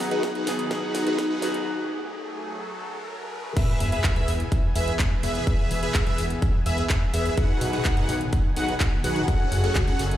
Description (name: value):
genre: EDM, festival progressive house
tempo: 126 BPM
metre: 4/4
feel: straight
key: E major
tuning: A4 = 440 Hz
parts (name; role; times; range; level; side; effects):
- bright concert grand piano; accompaniment; 0.0-1.7 s; B2 to G#4; -31 LUFS; equal; sidechain pumping, digital delay
- lush unison pad; sustained chords; 0.1-10.2 s; D#3 to G#5; -34 LUFS; left 1 dB; chorus, phaser, sidechain pumping
- supersaw chords; riff; 0.0-10.0 s; C#4 to F#5; -29 LUFS; equal; phaser, sidechain pumping, digital delay
- riser and sub drop; sound effects; 1.3-5.5 s; none; -34 LUFS; equal; none
- big-room dance drum kit; drums; 0.1-10.2 s; crash cymbal, handclaps, hi-hat, snare drum; -33 LUFS; equal; high-pass filter on snare, high-pass filter on hats, high-pass filter on cymbals, high-pass filter on room
- electronic kick drum; drums; 0.2-9.9 s; none; -23 LUFS; equal; high-pass filter on kick, high-pass filter on room
- wide unison lead; arpeggios; 3.6-10.0 s; E5 to F#5; -32 LUFS; equal; analog chorus, sidechain pumping, digital delay
- fat analog bass; bass; 3.8-10.2 s; E1 to C#2; -27 LUFS; equal; sidechain pumping
room: light reverb, digital ambience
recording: played on a big sound system in a bare room, large studio reverb, high-pass filter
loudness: -22 LUFS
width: side -12 dB against mid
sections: 0.0-3.6 A section; 3.6-10.2 B section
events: build-up 0.0-3.6; drum fill 0.0-1.7; filter sweep on analog synth pad 0.0-3.6; riser 1.3-3.6; break 1.7-3.6; drop 3.6-10.2; impact 3.6-5.5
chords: 0.0 B6; 1.7 F#madd9; 3.6 E; 7.4 B6; 9.3 F#madd9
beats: 0.23 0.71 1.19 | 1.66 2.14 2.61 3.09 | 3.56 4.04 4.52 4.99 | 5.47 5.95 6.42 6.90 | 7.38 7.85 8.33 8.80 | 9.28 9.76